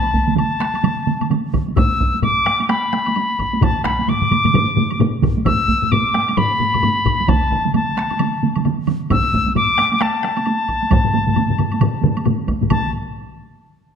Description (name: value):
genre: japanese traditional, taiko drum ensemble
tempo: 132 BPM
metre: 4/4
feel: swing 60% on 16ths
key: unclear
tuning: A4 = 440 Hz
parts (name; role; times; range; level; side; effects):
- bright reedy wooden piccolo; melody; 0.0-12.9 s; A5 to E6; -19 LUFS; left 2 dB; none
- taiko ensemble; percussion; 0.1-12.9 s; none; -23 LUFS; right 2 dB; none
- taiko ensemble; percussion; 0.1-12.9 s; none; -21 LUFS; right 1 dB; none
- taiko ensemble; percussion; 0.3-13.1 s; none; -21 LUFS; right 5 dB; none
- woodblock; percussion; 0.4-12.9 s; none; -34 LUFS; right 2 dB; none
- taiko ensemble; percussion; 1.8-13.1 s; none; -22 LUFS; left 4 dB; none
room: wet recital hall reverb, RT60 1.6 s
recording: none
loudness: -15 LUFS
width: side -7 dB against mid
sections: 0.0-12.7 A section; 12.7-14.0 B section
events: speeding up 0.0-14.0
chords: none